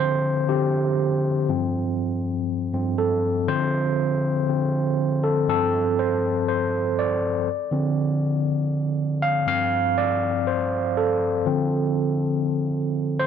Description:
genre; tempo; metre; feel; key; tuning
disco; 120 BPM; 4/4; straight; unclear; A4 = 440 Hz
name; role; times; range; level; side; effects
overdriven tine electric piano; solo; 0.0-13.3 s; G2 to F5; -21 LUFS; equal; auto-pan
room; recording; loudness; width
light reverb; nothing above 8.0 kHz; -21 LUFS; side -8 dB against mid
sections
0.0-13.3 A section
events
tine electric piano solo 0.0-13.3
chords
0.0 Dm7; 1.5 G9sus4; 3.5 Dm7; 5.5 G9sus4; 7.5 Dm7; 9.5 G9sus4; 11.5 Dm7

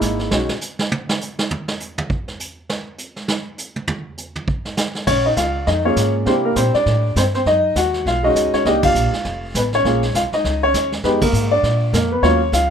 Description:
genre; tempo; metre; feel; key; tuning
jazz piano trio; 201 BPM; 4/4; swing 60% on 8ths; unclear; A4 = 439 Hz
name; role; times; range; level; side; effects
warm grand piano; melody; 0.0-0.5, 5.1-12.7 s; Gb3 to F#5; -17 LUFS; equal; none
upright bass; bass; 0.0-0.5, 5.1-12.7 s; F1 to C3; -21 LUFS; equal; none
vintage brush drum kit; drums; 0.0-12.7 s; brushed snare drum, crash cymbal, hi-hat, kick drum, snare drum, toms; -23 LUFS; right 2 dB; none
room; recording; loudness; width
light reverb; minimal, uncompressed stereo recording; -16 LUFS; side -7 dB against mid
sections
0.0-5.1 A section; 5.1-12.7 B section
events
grand piano solo 0.0-5.1; drum solo 0.3-5.1; band accent 8.8, 11.2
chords
0.3 N.C.; 5.1 Bbm7; 6.3 C9; 7.5 B6; 8.7 Cm9; 9.3 Faug; 9.8 Bbm; 11.0 Fm7b5; 11.6 Bb

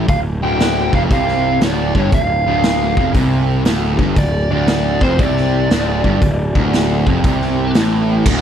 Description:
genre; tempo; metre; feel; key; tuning
blues rock power trio and southern rock; 118 BPM; 4/4; swing 66% on 8ths; D minor; A4 = 438 Hz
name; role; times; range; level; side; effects
fuzz guitar; riff; 0.0-8.4 s; D2 to C3; -18 LUFS; right 1 dB; distortion
fuzz picked electric bass; bass; 0.0-8.4 s; D1 to C2; -19 LUFS; equal; overdrive
biting lead guitar; melody; 0.1-7.7 s; C5 to G5; -20 LUFS; right 1 dB; overdrive, tape echo
raw garage drum kit; drums; 0.1-8.4 s; crash cymbal, hi-hat, kick drum, snare drum; -18 LUFS; equal; none
room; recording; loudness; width
little or no reverb; none; -13 LUFS; side -9 dB against mid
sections
0.0-8.3 A section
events
none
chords
0.0 Dm

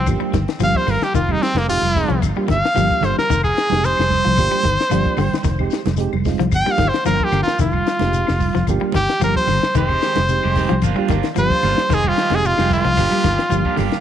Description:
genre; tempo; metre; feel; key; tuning
afrobeat; 112 BPM; 4/4; straight; F dorian; A4 = 441 Hz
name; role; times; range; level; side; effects
brilliant trumpet; melody; 0.0-13.8 s; Bb3 to G5; -19 LUFS; equal; tape echo
electric guitar at the edge of break-up; arpeggios; 0.0-14.0 s; D3 to G3; -25 LUFS; left 9 dB; tremolo
fingered electric bass; bass; 0.0-14.0 s; F1 to C2; -21 LUFS; equal; none
reed electric piano; accompaniment; 0.1-13.9 s; Ab3 to G5; -27 LUFS; right 10 dB; none
compact cocktail drum kit; drums; 0.1-14.0 s; hi-hat, kick drum, snare drum; -24 LUFS; left 3 dB; none
claves; percussion; 0.1-13.9 s; none; -39 LUFS; left 13 dB; none
shekere; percussion; 0.1-13.9 s; none; -28 LUFS; left 6 dB; none
congas; percussion; 0.2-13.9 s; none; -26 LUFS; right 11 dB; none
electric guitar at the edge of break-up; stabs; 9.8-14.0 s; Eb3 to G4; -26 LUFS; right 11 dB; none
room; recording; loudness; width
light reverb, studio reverb; 1960s-style stereo with parts hard left and right; -15 LUFS; side -10 dB against mid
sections
0.0-14.0 A section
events
trumpet solo 0.0-14.0; reed electric piano fill 4.6-5.5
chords
0.1 Gm7; 1.1 Fm9; 2.2 Gm7; 3.3 Fm9; 4.4 Gm7; 5.5 Fm9; 6.5 Gm7; 7.6 Fm9; 8.7 Gm7; 9.8 Fm9; 10.8 Gm7; 11.9 Fm9; 13.0 Gm7

